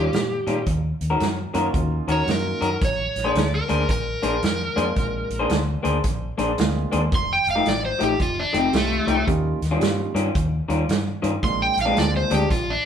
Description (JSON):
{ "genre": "electric blues shuffle", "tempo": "112 BPM", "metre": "4/4", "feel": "swing 64% on 8ths", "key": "Bb mixolydian", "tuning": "A4 = 440 Hz", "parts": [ { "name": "overdriven slide guitar", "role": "melody", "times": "0.0-12.9 s", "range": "A3 to C6", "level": "-23 LUFS", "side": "equal", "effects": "none" }, { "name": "electric guitar through a small old amp", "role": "riff", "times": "0.0-12.4 s", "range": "Bb2 to C5", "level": "-25 LUFS", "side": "left 3 dB", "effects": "spring reverb" }, { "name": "vintage muted fingered electric bass", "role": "bass", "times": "0.0-12.8 s", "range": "F1 to Bb2", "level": "-26 LUFS", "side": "equal", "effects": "none" }, { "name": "vintage drum kit", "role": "drums", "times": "0.1-12.7 s", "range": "hi-hat, kick drum, snare drum", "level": "-26 LUFS", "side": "right 2 dB", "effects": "none" }, { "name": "warm upright piano", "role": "accompaniment", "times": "1.5-12.3 s", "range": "Gb3 to F4", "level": "-29 LUFS", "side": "right 4 dB", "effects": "none" } ], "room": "moderate studio reverb, RT60 0.6 s", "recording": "band playing live in one room", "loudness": "-20 LUFS", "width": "side -8 dB against mid", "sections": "0.0-12.9 A section", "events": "electric slide guitar solo 0.0-12.9", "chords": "0.0 Eb9; 0.7 Ebm7; 2.8 Bb9; 7.1 F9; 9.3 Eb9; 11.4 Bb9" }